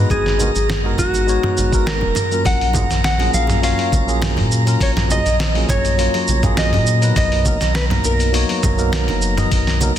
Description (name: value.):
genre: sunset chillout.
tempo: 102 BPM.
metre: 4/4.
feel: straight.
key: unclear.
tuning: A4 = 438 Hz.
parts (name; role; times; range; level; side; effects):
mellow electric guitar; melody; 0.0-10.0 s; Gb4 to Gb5; -22 LUFS; equal; tape echo.
tine electric piano; accompaniment; 0.0-9.9 s; Gb3 to D#5; -23 LUFS; moving between left 6 dB and right 3 dB; auto-pan, tape echo.
warm sub bass; bass; 0.0-10.0 s; Eb1 to Bb2; -19 LUFS; equal; none.
drifting glass-harmonics texture; texture; 0.0-10.0 s; Bb5; -27 LUFS; right 2 dB; chorus, built-in reverb.
dusty soul sampler-style drum kit; drums; 0.1-10.0 s; cabasa, hi-hat, snare drum, toms; -21 LUFS; equal; none.
electronic kick drum; drums; 0.1-9.6 s; none; -21 LUFS; equal; none.
congas; percussion; 0.1-9.9 s; none; -29 LUFS; right 3 dB; none.
room: light reverb.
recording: dense, heavily limited modern master.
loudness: -14 LUFS.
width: side -10 dB against mid.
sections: 0.0-10.0 A section.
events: none.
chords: 0.0 Abm9; 2.2 Gbmaj9/Bb; 7.2 Bmaj7.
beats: | 0.10 0.69 1.28 1.87 | 2.46 3.05 3.63 4.22 | 4.81 5.40 5.99 6.58 | 7.16 7.75 8.34 8.93 | 9.52.